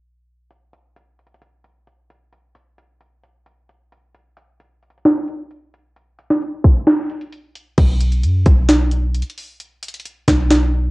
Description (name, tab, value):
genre	hip hop, trap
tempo	132 BPM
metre	4/4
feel	half-time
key	unclear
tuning	A4 = 440 Hz
part	trap drum kit	drums	0.5-10.6 s	crash cymbal, hi-hat, kick drum, snare drum	-15 LUFS	equal	vintage 12-bit sampler grit
part	clean 808-style bass	bass	7.8-10.9 s	B1 to F#2	-16 LUFS	equal	none
room	moderate small room reverb, RT60 0.5 s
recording	home recording on cassette, low-pass filter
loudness	-14 LUFS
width	side -23 dB against mid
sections	0.5-7.8 A section; 7.8-10.9 B section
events	kick muted 6.9-7.8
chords	none